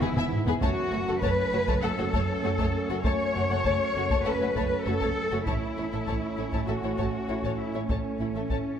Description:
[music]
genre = cinematic, hybrid orchestral and electronic film score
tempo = 99 BPM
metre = 4/4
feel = straight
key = unclear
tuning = A4 = 441 Hz
[part]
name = dark symphonic violin section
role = melody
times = 0.0-8.6 s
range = B4 to A5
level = -38 LUFS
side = left 5 dB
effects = none
[part]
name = warm symphonic violin section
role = second line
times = 0.0-8.6 s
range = E4 to E5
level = -36 LUFS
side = left 5 dB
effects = none
[part]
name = warm symphonic viola section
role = accompaniment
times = 0.0-8.6 s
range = A3 to B3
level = -35 LUFS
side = right 1 dB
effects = none
[part]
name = warbly tape-like pad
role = sustained chords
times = 0.0-8.8 s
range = E3 to E5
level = -37 LUFS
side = left 3 dB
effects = chorus, built-in reverb
[part]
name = warm French horn section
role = sustained chords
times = 0.0-8.8 s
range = C#4 to C#5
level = -36 LUFS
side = left 6 dB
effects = none
[part]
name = warm trombone section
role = sustained chords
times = 0.0-8.8 s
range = F#2 to C#4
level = -35 LUFS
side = right 2 dB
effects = none
[part]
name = rich studio double bass section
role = bass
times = 0.0-8.6 s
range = E1 to A1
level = -33 LUFS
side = right 3 dB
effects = none
[part]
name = warm symphonic cello section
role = bass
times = 0.0-8.8 s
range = C#4 to C#5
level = -31 LUFS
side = right 1 dB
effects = none
[part]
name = taiko ensemble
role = drums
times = 0.0-8.8 s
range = none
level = -32 LUFS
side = equal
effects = none
[sound]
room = moderate concert hall reverb, RT60 2.2 s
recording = none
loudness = -25 LUFS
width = side -8 dB against mid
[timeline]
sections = 0.0-8.8 A section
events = drum fill 0.0-0.6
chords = 0.0 E; 0.6 F#m; 5.5 A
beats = 0.01 | 0.62 1.23 1.83 2.44 | 3.04 3.65 4.26 4.86 | 5.47 6.07 6.68 7.29 | 7.89 8.50

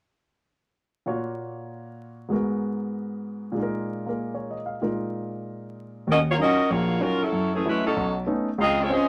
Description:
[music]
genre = jazz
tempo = 191 BPM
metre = 4/4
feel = swing 63% on 8ths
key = Eb minor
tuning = A4 = 440 Hz
[part]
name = warm concert grand piano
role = accompaniment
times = 1.1-9.1 s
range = Bb1 to F5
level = -29 LUFS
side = equal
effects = none
[part]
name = warm saxophone section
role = melody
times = 6.1-9.1 s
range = Fb3 to Eb5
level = -24 LUFS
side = equal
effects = none
[sound]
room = moderate studio reverb, RT60 0.6 s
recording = vinyl crackle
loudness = -26 LUFS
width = mono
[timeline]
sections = 1.1-6.1 A section; 6.1-9.1 B section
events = none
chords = 1.1 Gbmaj7/Bb; 2.3 Abm7; 3.6 Bb7sus4; 6.1 Ebm9; 7.3 Gbm7; 8.0 B9; 8.6 Dbmaj7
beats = | 1.06 1.37 1.68 2.00 | 2.31 2.63 2.94 3.25 | 3.57 3.88 4.20 4.51 | 4.82 5.14 5.45 5.76 | 6.08 6.39 6.70 7.02 | 7.33 7.64 7.96 8.27 | 8.58 8.90

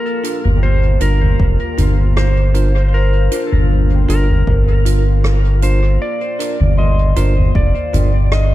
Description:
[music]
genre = ambient dub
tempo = 78 BPM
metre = 4/4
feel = swing 54% on 16ths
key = unclear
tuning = A4 = 441 Hz
[part]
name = clean lap steel guitar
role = melody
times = 0.0-8.5 s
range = Bb4 to Eb5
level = -22 LUFS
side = right 1 dB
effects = dub echo
[part]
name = deep dark ambient pad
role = sustained chords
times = 0.0-8.5 s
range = Bb3 to F5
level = -26 LUFS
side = equal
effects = chorus, built-in reverb
[part]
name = bell-like tine electric piano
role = stabs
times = 0.2-8.1 s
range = D4 to Bb4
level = -27 LUFS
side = right 3 dB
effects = dub echo
[part]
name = soft-mallet drum kit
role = drums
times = 0.2-8.5 s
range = hi-hat, rim click, toms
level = -22 LUFS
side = left 1 dB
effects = dub echo
[part]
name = round analog bass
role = bass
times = 0.5-8.5 s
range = F1 to G1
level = -13 LUFS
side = equal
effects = none
[part]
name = concert harp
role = arpeggios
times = 0.6-8.5 s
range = G3 to C6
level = -28 LUFS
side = left 7 dB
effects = dub echo
[part]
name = electronic kick drum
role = drums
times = 1.4-7.7 s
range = none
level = -19 LUFS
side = equal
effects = none
[sound]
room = studio reverb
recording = echo-heavy mix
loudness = -12 LUFS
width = side -15 dB against mid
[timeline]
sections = 0.0-8.5 A section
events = none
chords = 0.0 Bb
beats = 0.63 1.40 2.17 | 2.94 3.70 4.47 5.24 | 6.01 6.78 7.55 8.32

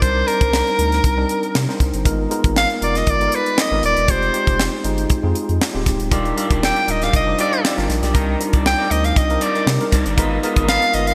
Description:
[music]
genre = polished 1980s jazz-funk pop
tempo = 118 BPM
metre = 4/4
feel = swing 54% on 16ths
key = unclear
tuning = A4 = 441 Hz
[part]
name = bright soprano saxophone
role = melody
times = 0.0-11.1 s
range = Bb4 to G5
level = -22 LUFS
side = equal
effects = none
[part]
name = tine electric piano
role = accompaniment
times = 0.0-11.1 s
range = G3 to C5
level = -25 LUFS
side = equal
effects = overdrive, subtle chorus
[part]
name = warm sub bass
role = bass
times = 0.0-11.1 s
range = Db1 to C3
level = -24 LUFS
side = equal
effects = none
[part]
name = tight funk drum kit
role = drums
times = 0.0-11.1 s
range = hi-hat, kick drum, snare drum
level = -23 LUFS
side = equal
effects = gated reverb
[part]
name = electric guitar through a small old amp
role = riff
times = 6.1-11.1 s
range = Eb4 to Eb5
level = -27 LUFS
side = equal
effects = subtle chorus
[sound]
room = wet lush hall reverb, RT60 2.5 s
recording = bright 1980s-style digital production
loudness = -18 LUFS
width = mono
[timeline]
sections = 0.0-11.1 A section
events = none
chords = 0.0 Cm9; 2.1 Abm6; 4.1 Fm9; 6.1 Ebmaj9; 8.2 Cm9; 10.2 Abm6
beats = | 0.02 0.53 1.04 1.55 | 2.06 2.56 3.07 3.58 | 4.09 4.59 5.10 5.61 | 6.12 6.63 7.13 7.64 | 8.15 8.66 9.16 9.67 | 10.18 10.69

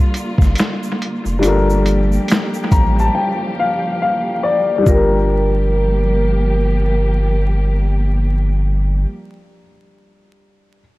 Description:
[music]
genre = lo-fi hip hop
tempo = 70 BPM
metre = 4/4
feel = swing 58% on 16ths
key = G minor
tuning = A4 = 442 Hz
[part]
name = dark upright piano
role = accompaniment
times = 0.0-10.8 s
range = G3 to Bb5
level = -18 LUFS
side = left 3 dB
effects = low-pass filter, analog delay
[part]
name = warm studio string section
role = sustained chords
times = 0.0-9.1 s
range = D3 to G4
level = -24 LUFS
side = right 1 dB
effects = low-pass filter
[part]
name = lo-fi sampler-style drum kit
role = drums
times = 0.1-5.1 s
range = finger snaps, hi-hat, kick drum, snare drum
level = -16 LUFS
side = equal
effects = vintage 12-bit sampler grit, analog delay
[part]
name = egg shaker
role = percussion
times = 0.2-5.3 s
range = none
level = -39 LUFS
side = right 6 dB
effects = analog delay
[part]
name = sub bass with octave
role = bass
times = 0.4-9.1 s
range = F1 to A1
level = -16 LUFS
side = equal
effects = none
[part]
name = vibraphone with medium mallets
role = melody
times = 4.9-7.4 s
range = Bb4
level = -21 LUFS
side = right 2 dB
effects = low-pass filter, analog delay
[sound]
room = small room ambience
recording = echo-heavy mix, vinyl crackle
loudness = -14 LUFS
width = side -19 dB against mid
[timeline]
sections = 0.0-4.9 A section; 4.9-8.3 B section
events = break 3.1-4.9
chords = 0.0 Gm7; 1.4 Gm9; 4.9 Gm7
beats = 0.58 | 1.44 2.29 3.15 4.01 | 4.86 5.72 6.58 7.44

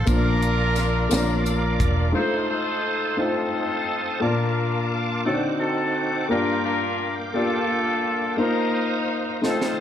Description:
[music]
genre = slow gospel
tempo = 58 BPM (dotted quarters)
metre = 6/8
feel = straight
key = unclear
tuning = A4 = 440 Hz
[part]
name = edgy tenor saxophone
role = melody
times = 0.0-1.8 s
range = Bb4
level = -30 LUFS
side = right 5 dB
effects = none
[part]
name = warm upright piano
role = accompaniment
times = 0.0-9.8 s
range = G2 to A5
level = -25 LUFS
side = left 2 dB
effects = none
[part]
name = bright tonewheel organ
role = sustained chords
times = 0.0-9.8 s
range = Bb3 to Eb6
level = -30 LUFS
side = right 2 dB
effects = fast rotary speaker, chorus vibrato
[part]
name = fingered electric bass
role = bass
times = 0.0-2.1 s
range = E1 to Bb1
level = -23 LUFS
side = right 1 dB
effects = none
[part]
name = mellow horn section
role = melody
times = 0.1-9.8 s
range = C4 to C5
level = -25 LUFS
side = left 2 dB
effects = none
[part]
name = crisp fusion drum kit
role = drums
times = 0.1-2.0, 9.4-9.8 s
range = hi-hat, kick drum, snare drum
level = -25 LUFS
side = right 1 dB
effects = none
[part]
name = tambourine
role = percussion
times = 0.1-1.8 s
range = none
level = -37 LUFS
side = left 8 dB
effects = none
[sound]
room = moderate scoring stage reverb, RT60 1.7 s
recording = none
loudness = -20 LUFS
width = side -10 dB against mid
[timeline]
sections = 0.0-2.2 A section; 2.2-9.8 B section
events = drum fill 9.4-9.8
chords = 0.1 Bb; 2.2 F7; 4.2 Bbmaj7; 5.3 D7b9; 6.3 Gm7; 8.4 F7sus4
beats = | 0.08 1.12 | 2.15 3.19 | 4.23 5.27 | 6.30 7.34 | 8.38 9.42

